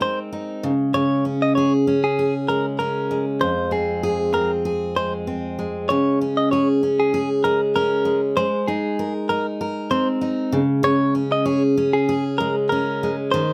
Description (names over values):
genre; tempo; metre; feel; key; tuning
acoustic pop; 97 BPM; 4/4; swing 55% on 16ths; unclear; A4 = 440 Hz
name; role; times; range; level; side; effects
picked steel-string acoustic guitar; accompaniment; 0.0-13.5 s; F2 to Bb4; -22 LUFS; equal; none
direct-recorded clean electric guitar; arpeggios; 0.0-13.5 s; Ab4 to Eb5; -25 LUFS; equal; none
room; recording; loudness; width
light reverb; close, detailed microphones; -21 LUFS; mono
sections
0.0-13.5 A section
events
none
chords
0.0 Abadd9; 0.6 Db5; 3.4 Fm; 5.9 Db5; 8.4 Abadd9; 10.5 Db5